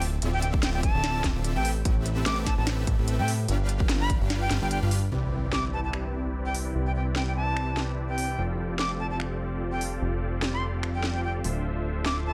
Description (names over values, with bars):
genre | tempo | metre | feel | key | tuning
future bass | 147 BPM | 4/4 | swing 55% on 16ths, half-time | C major | A4 = 437 Hz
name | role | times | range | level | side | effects
breathy bright jazz flute | melody | 0.0-12.3 s | G5 to D6 | -35 LUFS | equal | vintage 12-bit sampler grit, sidechain pumping, dub echo
dense compressed supersaw | riff | 0.0-12.3 s | C4 to F5 | -36 LUFS | equal | sidechain pumping, low-pass filter
fat analog bass | bass | 0.0-12.3 s | D1 to A2 | -31 LUFS | equal | sidechain pumping
trap drum kit | drums | 0.0-12.1 s | finger snaps, hi-hat, snare drum | -34 LUFS | equal | none
electronic kick drum | drums | 0.5-4.2 s | none | -28 LUFS | equal | none
shimmering ambient pad | sustained chords | 6.0-12.3 s | D3 to E5 | -46 LUFS | equal | none
impact | sound effects | 5.1-6.8 s | none | -39 LUFS | equal | none
room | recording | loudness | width
little or no reverb | none | -27 LUFS | mono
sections
0.0-5.1 A section; 5.1-12.3 B section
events
drop 0.0-5.1; kick drops out 4.3-5.1; impact 5.1-6.8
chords
0.0 Dm9; 1.6 Am9; 3.5 G7; 5.1 Cmaj9; 8.4 F69; 11.4 Dm9